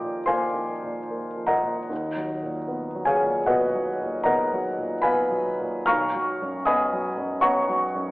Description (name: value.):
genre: classical, impressionist solo piano.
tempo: 76 BPM.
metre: 5/4.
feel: rubato.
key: unclear.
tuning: A4 = 441 Hz.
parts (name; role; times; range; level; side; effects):
warm concert grand piano; solo; 0.0-8.1 s; B1 to F6; -22 LUFS; equal; none.
room: wet recital hall reverb, RT60 1.7 s.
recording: heard from further back in the room, telephone sound.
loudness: -22 LUFS.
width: side -20 dB against mid.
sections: 0.0-8.1 A section.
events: none.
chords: 0.0 Ebadd9; 1.9 Bmaj7/D#; 5.9 Badd9.